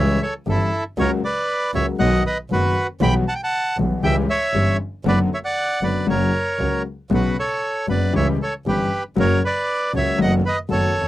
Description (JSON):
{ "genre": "tango", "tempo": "117 BPM", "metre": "4/4", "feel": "rubato", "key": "B minor", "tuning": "A4 = 440 Hz", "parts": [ { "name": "bandoneon", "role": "melody", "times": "0.0-11.1 s", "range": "E4 to B5", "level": "-21 LUFS", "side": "right 1 dB", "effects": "none" }, { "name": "warm concert grand piano", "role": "accompaniment", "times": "0.0-11.1 s", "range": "F#1 to G4", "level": "-21 LUFS", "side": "left 4 dB", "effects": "none" }, { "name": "clear double bass", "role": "bass", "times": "0.0-11.1 s", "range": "E#1 to C#2", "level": "-23 LUFS", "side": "right 2 dB", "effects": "none" } ], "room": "little or no reverb", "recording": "dry, close 1970s-style studio recording", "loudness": "-18 LUFS", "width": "side -15 dB against mid", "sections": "0.0-11.1 A section", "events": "none", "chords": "0.0 C#dim; 1.0 F#/C#; 2.0 B; 3.0 Emadd9/B; 4.0 C#dim; 5.0 Bm/F#; 6.1 F#; 7.1 Bsus2; 8.1 C#dim; 9.2 F#; 10.2 B7/F#" }